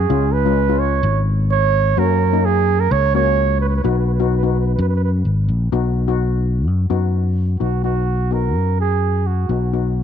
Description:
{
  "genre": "calypso",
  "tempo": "128 BPM",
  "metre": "4/4",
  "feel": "straight",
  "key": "B major",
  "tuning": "A4 = 437 Hz",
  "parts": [
    { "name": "mellow flugelhorn", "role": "melody", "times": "0.0-9.7 s", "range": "F#4 to C#5", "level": "-20 LUFS", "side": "right 12 dB", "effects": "none" },
    { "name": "fingered electric bass", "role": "bass", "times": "0.0-10.0 s", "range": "G#1 to F#2", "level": "-17 LUFS", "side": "left 1 dB", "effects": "none" },
    { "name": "steel pan", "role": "accompaniment", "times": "0.1-10.0 s", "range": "G#3 to F#4", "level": "-23 LUFS", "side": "left 14 dB", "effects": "none" }
  ],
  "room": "little or no reverb",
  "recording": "1960s-style stereo with parts hard left and right",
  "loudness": "-15 LUFS",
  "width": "side -8 dB against mid",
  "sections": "0.0-5.7 A section; 5.7-7.6 B section; 7.6-10.0 C section",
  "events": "none",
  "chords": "0.1 C#7; 2.0 F#; 3.9 B"
}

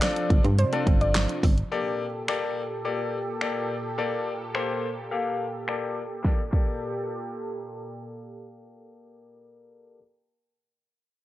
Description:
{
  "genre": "dance-pop",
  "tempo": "106 BPM",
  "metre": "4/4",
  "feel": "straight",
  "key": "G minor",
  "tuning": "A4 = 445 Hz",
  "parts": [
    { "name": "soft round pluck", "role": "melody", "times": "0.0-1.2 s", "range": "C5 to D5", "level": "-32 LUFS", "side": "right 1 dB", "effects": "chorus, tape echo" },
    { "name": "clear concert grand piano", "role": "accompaniment", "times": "0.0-10.0 s", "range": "Bb3 to F5", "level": "-31 LUFS", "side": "left 4 dB", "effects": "sidechain pumping" },
    { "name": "warm analog pad", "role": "sustained chords", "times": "0.0-9.3 s", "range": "Bb2 to A4", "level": "-34 LUFS", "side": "right 2 dB", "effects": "chorus, sidechain pumping" },
    { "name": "direct-recorded clean electric guitar", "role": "riff", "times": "0.0-1.6 s", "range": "A3 to D4", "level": "-37 LUFS", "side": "right 6 dB", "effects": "ensemble chorus" },
    { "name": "pop drum kit", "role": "drums", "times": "0.0-6.7 s", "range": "crash cymbal, finger snaps, handclaps, hi-hat, kick drum, snare drum", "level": "-24 LUFS", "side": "equal", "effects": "vintage 12-bit sampler grit" },
    { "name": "solid FM bass", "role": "bass", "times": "0.3-1.6 s", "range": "G1 to G2", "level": "-23 LUFS", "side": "equal", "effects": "sidechain pumping" }
  ],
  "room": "light reverb, digital ambience",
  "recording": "cassette tape, low-pass filter",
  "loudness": "-24 LUFS",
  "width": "side -15 dB against mid",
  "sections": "0.0-1.7 A section; 1.7-6.2 B section; 6.2-8.5 C section",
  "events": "drop 0.0-1.7; filter sweep 1.7-6.2; kick muted 4.0-6.2",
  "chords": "0.0 Dm7/G; 1.7 Gmadd9"
}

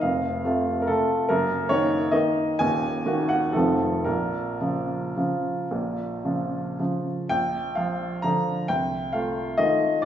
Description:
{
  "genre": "classical, piano waltz",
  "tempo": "106-150 BPM",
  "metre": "3/4",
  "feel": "rubato",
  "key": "Bb minor",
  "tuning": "A4 = 441 Hz",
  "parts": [
    { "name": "clear upright piano", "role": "solo", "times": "0.0-10.1 s", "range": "Eb1 to Bb5", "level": "-22 LUFS", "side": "equal", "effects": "none" }
  ],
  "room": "wet recital hall reverb, RT60 1.5 s",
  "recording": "recorded in a church or concert hall, nothing above 7.9 kHz",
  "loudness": "-22 LUFS",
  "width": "side -10 dB against mid",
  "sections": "0.0-7.3 A section; 7.3-10.1 B section",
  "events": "none",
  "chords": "0.0 F; 1.3 Ebm/Gb; 2.6 Ebm; 3.5 F7; 4.1 Bbm; 7.3 Bb; 8.7 F7/C"
}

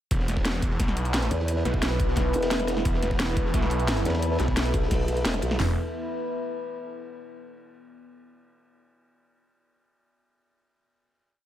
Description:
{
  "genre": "dark technical drum and bass",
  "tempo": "175 BPM",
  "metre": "4/4",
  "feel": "straight",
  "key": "unclear",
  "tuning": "A4 = 439 Hz",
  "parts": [
    { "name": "deep dark ambient pad", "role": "sustained chords", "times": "1.0-5.8 s", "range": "B3 to B4", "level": "-34 LUFS", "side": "right 1 dB", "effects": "chorus, built-in reverb, sidechain pumping" },
    { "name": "snarling distorted saw bass", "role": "bass", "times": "0.1-5.8 s", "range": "E1 to B1", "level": "-27 LUFS", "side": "equal", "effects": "overdrive, sidechain pumping" },
    { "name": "crunchy breakbeat drum kit", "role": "drums", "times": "0.1-5.6 s", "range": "hi-hat, ride cymbal, snare drum", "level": "-39 LUFS", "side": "equal", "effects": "high-pass filter on cymbals, high-pass filter on hats, high-pass filter on snare, high-pass filter on room" },
    { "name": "drum and bass drum kit", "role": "drums", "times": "0.1-5.7 s", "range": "hi-hat, kick drum, snare drum, toms", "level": "-27 LUFS", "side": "equal", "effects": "overdrive" },
    { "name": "drum and bass drum kit", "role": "drums", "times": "0.1-5.6 s", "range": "hi-hat, snare drum", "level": "-30 LUFS", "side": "equal", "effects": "overdrive" },
    { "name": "warbly tape-like pad", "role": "texture", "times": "1.0-6.9 s", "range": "E4 to B5", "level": "-33 LUFS", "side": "left 1 dB", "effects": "chorus, built-in reverb, sidechain pumping" },
    { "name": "formant-sweep wobble bass", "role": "bass", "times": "1.3-5.6 s", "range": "E1 to E2", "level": "-26 LUFS", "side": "equal", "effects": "chorus" }
  ],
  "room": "light reverb",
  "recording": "none",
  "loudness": "-23 LUFS",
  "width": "side -12 dB against mid",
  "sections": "0.1-5.6 drop; 5.6-7.0 final chord",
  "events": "drop 0.1-5.6",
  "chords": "0.1 E5"
}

